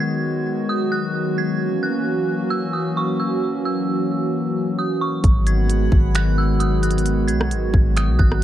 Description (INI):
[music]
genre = hip hop, atmospheric cloud-rap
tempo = 132 BPM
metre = 4/4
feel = half-time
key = G# minor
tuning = A4 = 441 Hz
[part]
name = dark detuned synth bell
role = melody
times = 0.0-8.4 s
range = C#6 to G#6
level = -28 LUFS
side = right 2 dB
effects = chorus, tape echo
[part]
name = hollow soft pad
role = sustained chords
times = 0.0-8.4 s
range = D#3 to F#4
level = -21 LUFS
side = equal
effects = chorus, sidechain pumping
[part]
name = soft 808-style bass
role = bass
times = 5.2-8.4 s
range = G#1 to B1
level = -19 LUFS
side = equal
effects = none
[part]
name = trap drum kit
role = drums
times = 5.2-8.4 s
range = finger snaps, hi-hat, kick drum, rim click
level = -18 LUFS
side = equal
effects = none
[part]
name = drifting glass-harmonics texture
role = texture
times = 5.4-7.0 s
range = G#4 to B5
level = -36 LUFS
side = left 2 dB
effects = chorus, built-in reverb
[sound]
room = little or no reverb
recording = dark, warm production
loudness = -18 LUFS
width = side -12 dB against mid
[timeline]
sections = 0.0-8.4 A section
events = none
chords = 0.0 G#m7; 1.6 F#7; 5.2 G#m7